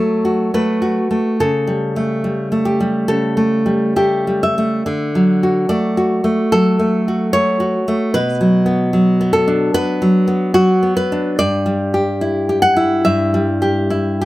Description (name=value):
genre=romantic piece for solo classical guitar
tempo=62-78 BPM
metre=4/4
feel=rubato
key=D major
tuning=A4 = 443 Hz
part: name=nylon-string guitar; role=solo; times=0.0-14.2 s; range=G2 to F#5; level=-14 LUFS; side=equal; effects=none
room=light reverb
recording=none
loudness=-14 LUFS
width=side -17 dB against mid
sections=0.0-14.2 A section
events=none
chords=0.0 D (rootless); 1.4 A7/C#; 4.9 D; 8.1 Bm; 11.4 Em7/G